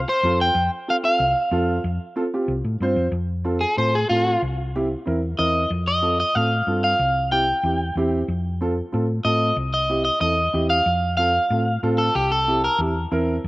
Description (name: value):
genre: latin, cumbia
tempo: 186 BPM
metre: 4/4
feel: straight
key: F major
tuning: A4 = 442 Hz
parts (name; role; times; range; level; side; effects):
- hollow-body short-scale fingered electric bass; bass; 0.0-13.5 s; C2 to A2; -24 LUFS; equal; none
- electric guitar at the edge of break-up; melody; 0.1-12.8 s; F4 to G5; -20 LUFS; equal; spring reverb
- dark upright piano; accompaniment; 0.2-13.3 s; C4 to C5; -25 LUFS; right 1 dB; none
room: little or no reverb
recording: recorded outdoors, with no room sound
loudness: -19 LUFS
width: side -20 dB against mid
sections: 0.0-3.1 A section; 3.1-13.4 B section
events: clean electric guitar solo 3.1-13.4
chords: 0.0 F; 4.4 C7; 5.7 F; 7.0 C; 8.3 F; 9.6 C; 10.9 F; 12.1 C7